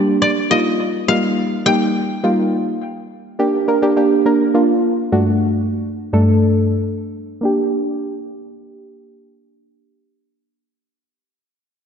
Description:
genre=pop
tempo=104 BPM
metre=4/4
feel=straight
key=G minor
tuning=A4 = 441 Hz
part: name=koto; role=melody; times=0.0-3.0 s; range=Bb4 to G5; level=-20 LUFS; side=left 3 dB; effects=analog delay
part: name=soft round pluck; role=accompaniment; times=0.0-10.4 s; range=G2 to Bb4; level=-15 LUFS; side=equal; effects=chorus, low-pass filter
room=wet lush hall reverb, RT60 1.9 s, small room ambience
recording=dreamy mix soaked in reverb, nothing above 7.9 kHz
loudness=-15 LUFS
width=side -7 dB against mid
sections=0.0-2.8 A section; 2.8-7.4 B section; 7.4-9.7 C section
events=filter sweep on synth pluck 2.8-7.4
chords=0.0 Gm; 0.5 Ebadd9/G; 2.8 Gm; 5.1 D/G; 7.4 Gm

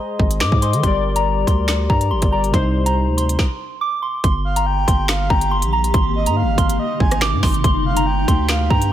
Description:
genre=hip hop, drill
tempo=141 BPM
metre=4/4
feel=half-time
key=G phrygian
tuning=A4 = 440 Hz
part: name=soft synth bell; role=melody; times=0.0-8.9 s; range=Bb5 to D6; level=-22 LUFS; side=left 1 dB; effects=chorus, phaser, ping-pong delay
part: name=warbly lo-fi synth keys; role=accompaniment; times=0.0-3.4 s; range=C3 to Eb5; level=-22 LUFS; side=left 3 dB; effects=chorus
part: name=long sustained 808-style bass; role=bass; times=0.2-8.9 s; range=G1 to Eb3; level=-20 LUFS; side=equal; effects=none
part: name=drill drum kit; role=drums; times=0.2-8.9 s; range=finger snaps, hi-hat, kick drum, rim click, snare drum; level=-18 LUFS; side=equal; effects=none
part: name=granular cloud pad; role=sustained chords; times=5.0-8.9 s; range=C3 to G4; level=-25 LUFS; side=left 2 dB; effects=built-in reverb
part: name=breathy flute-like synth lead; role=second line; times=4.4-8.9 s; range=Eb5 to Ab5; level=-25 LUFS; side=right 5 dB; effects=chorus, tremolo, ping-pong delay
room=digital ambience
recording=none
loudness=-15 LUFS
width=side -11 dB against mid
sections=0.0-4.2 A section; 4.2-8.9 B section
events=stop 3.4-4.2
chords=0.0 Ab; 0.8 Gm; 2.5 Cm; 4.2 Gm; 5.9 Ab; 7.6 Gm

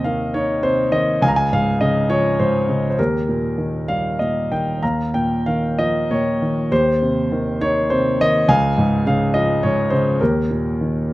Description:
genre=classical, lyrical solo piano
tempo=94-106 BPM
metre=3/4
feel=rubato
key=unclear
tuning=A4 = 441 Hz
part: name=warm concert grand piano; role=solo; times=0.0-11.1 s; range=Db2 to Bb5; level=-16 LUFS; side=equal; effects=none
room=light reverb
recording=close, detailed microphones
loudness=-16 LUFS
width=side -17 dB against mid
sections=0.0-11.1 A section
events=none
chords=0.0 Dbmaj9/Eb; 1.2 Db; 3.0 Eb; 4.8 Ebsus2; 6.7 Eb6; 8.5 Db; 10.2 Eb

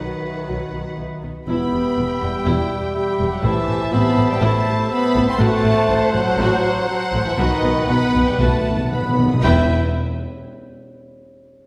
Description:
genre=cinematic, heroic adventure film score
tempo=121 BPM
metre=4/4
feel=uneven beats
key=E harmonic minor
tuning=A4 = 440 Hz
part: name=rich studio violin section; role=melody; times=0.0-9.7 s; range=F#5 to A5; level=-35 LUFS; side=equal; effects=none
part: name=clear clarinet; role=second line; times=0.0-9.7 s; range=F#4 to C5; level=-31 LUFS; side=equal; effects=none
part: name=clear oboe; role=second line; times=0.0-9.7 s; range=B4 to G5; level=-33 LUFS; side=equal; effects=none
part: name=mellow hollow concert flute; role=second line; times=0.0-9.7 s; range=D#5 to B5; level=-32 LUFS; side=equal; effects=none
part: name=rich symphonic violin section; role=second line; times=0.0-9.7 s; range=B4 to D#6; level=-33 LUFS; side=equal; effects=none
part: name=warm symphonic viola section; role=accompaniment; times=0.0-9.7 s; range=F#3 to C5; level=-29 LUFS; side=equal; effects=none
part: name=mellow French horn section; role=sustained chords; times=0.0-9.7 s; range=D#3 to E4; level=-24 LUFS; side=equal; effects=none
part: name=rich symphonic cello section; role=bass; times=0.0-9.7 s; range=E2 to D#3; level=-27 LUFS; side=equal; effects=none
part: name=rich symphonic double bass section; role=bass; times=0.0-9.7 s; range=E1 to B1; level=-27 LUFS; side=equal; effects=none
part: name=timpani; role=percussion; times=7.4-9.7 s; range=E2 to B2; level=-25 LUFS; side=equal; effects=none
room=wet scoring stage reverb, RT60 1.9 s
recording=heard from further back in the room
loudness=-19 LUFS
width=mono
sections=0.0-1.5 A section; 1.5-9.4 B section; 9.4-11.5 C section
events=slowing down 4.4-9.4; timpani fill 7.4-9.4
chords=0.0 B; 1.5 Em; 3.4 Amadd9; 5.4 F#dim/A; 7.4 B; 9.4 Em

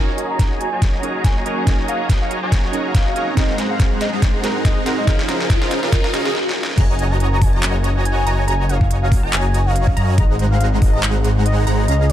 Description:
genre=future bass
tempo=141 BPM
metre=4/4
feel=swing 56% on 16ths, half-time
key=Gb lydian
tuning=A4 = 440 Hz
part: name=warm velvety synth lead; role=melody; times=0.0-12.1 s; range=Ab4 to Bb5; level=-26 LUFS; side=equal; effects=chorus, vintage 12-bit sampler grit, sidechain pumping, digital delay
part: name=glassy digital keys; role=accompaniment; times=0.0-6.8 s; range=C4 to Bb4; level=-27 LUFS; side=right 4 dB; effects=chorus, sidechain pumping, digital delay
part: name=bright symphonic string section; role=sustained chords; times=0.0-6.3 s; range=F3 to Bb4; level=-32 LUFS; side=left 2 dB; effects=sidechain pumping, low-pass filter
part: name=dense compressed supersaw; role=riff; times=0.0-12.1 s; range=Ab3 to Bb5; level=-23 LUFS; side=right 1 dB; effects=sidechain pumping, low-pass filter
part: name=riser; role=sound effects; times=0.0-6.4 s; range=none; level=-29 LUFS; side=left 1 dB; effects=none
part: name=dubstep drum kit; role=drums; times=0.2-12.1 s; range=crash cymbal, handclaps, hi-hat, snare drum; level=-25 LUFS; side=equal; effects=high-pass filter on snare, high-pass filter on hats, high-pass filter on cymbals
part: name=electronic kick drum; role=drums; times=0.4-10.9 s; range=none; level=-16 LUFS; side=equal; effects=none
part: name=wide unison pluck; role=arpeggios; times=6.8-12.1 s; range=Bb5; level=-29 LUFS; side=right 1 dB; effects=sidechain pumping
part: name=wide detuned saw bass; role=bass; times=6.8-12.1 s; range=Gb1 to Gb2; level=-17 LUFS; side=equal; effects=chorus, sidechain pumping
room=digital ambience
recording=none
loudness=-15 LUFS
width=side -12 dB against mid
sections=0.0-6.8 A section; 6.8-12.1 B section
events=build-up 0.0-6.8; drum fill 0.0-6.4, 6.4-6.8; riser 0.0-6.4; stop 6.4-6.8; drop 6.8-12.1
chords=0.0 Gb69; 3.4 Ab7; 5.1 Db6; 6.8 Gb69; 10.2 Ab7

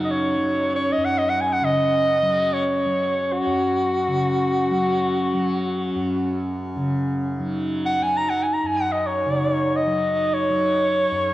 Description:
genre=world meditative, free-time meditation music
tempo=free time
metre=none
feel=none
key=unclear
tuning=A4 = 440 Hz
part: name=breathy soprano saxophone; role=melody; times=0.0-11.3 s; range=F#4 to A#5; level=-21 LUFS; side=equal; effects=tape echo
part: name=tanpura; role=drone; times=0.0-11.3 s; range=F#2 to F#3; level=-28 LUFS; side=equal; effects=none
part: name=glass harmonica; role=texture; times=0.0-11.3 s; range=C#4 to G#4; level=-26 LUFS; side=equal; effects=none
room=wet recital hall reverb, RT60 1.5 s, studio reverb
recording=worn, warbling old tape, cassette tape, warbly pitch drift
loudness=-19 LUFS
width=side -15 dB against mid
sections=0.0-6.8 A section; 6.8-11.3 A section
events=none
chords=none

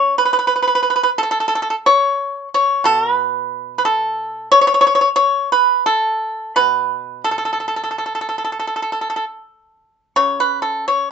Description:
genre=chinese traditional, Chinese solo plucked strings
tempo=76-91 BPM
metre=4/4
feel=rubato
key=unclear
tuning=A4 = 440 Hz
part: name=pipa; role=solo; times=0.0-11.1 s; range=B2 to C#5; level=-15 LUFS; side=equal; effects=none
room=moderate small room reverb, RT60 0.6 s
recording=band playing live in one room, nothing above 7.9 kHz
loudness=-15 LUFS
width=side -7 dB against mid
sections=0.0-10.2 A section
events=none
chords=none

